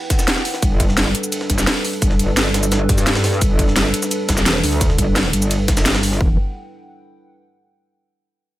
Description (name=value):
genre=dark technical drum and bass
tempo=172 BPM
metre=4/4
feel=straight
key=E minor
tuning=A4 = 440 Hz
part: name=dark analog pad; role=sustained chords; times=0.0-6.4 s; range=G3 to G5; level=-25 LUFS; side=equal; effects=chorus, sidechain pumping
part: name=drum and bass drum kit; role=drums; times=0.1-6.1 s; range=hi-hat, shaker, snare drum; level=-19 LUFS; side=equal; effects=overdrive
part: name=electronic kick drum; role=drums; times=0.1-6.3 s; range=none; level=-19 LUFS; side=equal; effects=none
part: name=jungle sampler-style drum kit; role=drums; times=0.1-6.2 s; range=hi-hat, ride cymbal, snare drum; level=-26 LUFS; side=equal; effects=high-pass filter on cymbals, high-pass filter on snare, high-pass filter on hats
part: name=metallic wobble bass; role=bass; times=0.6-6.4 s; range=E1 to G2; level=-19 LUFS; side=equal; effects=chorus, overdrive, sidechain pumping
room=little or no reverb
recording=none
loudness=-15 LUFS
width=side -15 dB against mid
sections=0.0-6.2 A section; 6.2-7.6 B section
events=drop 0.0-6.2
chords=0.0 Em; 0.6 G; 6.2 Em